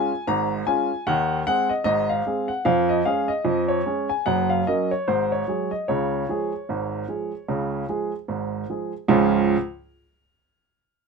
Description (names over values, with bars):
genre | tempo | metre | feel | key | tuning
ragtime piano | 75 BPM | 2/4 | swing 58% on 16ths | Db major | A4 = 440 Hz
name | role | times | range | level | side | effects
clear upright piano | solo | 0.0-9.6 s | Gb1 to Bb5 | -21 LUFS | right 1 dB | none
room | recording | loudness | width
moderate studio ambience, RT60 0.5 s | minimal, uncompressed stereo recording | -21 LUFS | side -4 dB against mid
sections
0.0-9.1 A section; 9.1-10.7 B section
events
none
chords
0.0 Db; 1.1 Ab/Eb; 2.7 Db/F; 4.3 Gb; 5.1 Abadd11; 5.9 Db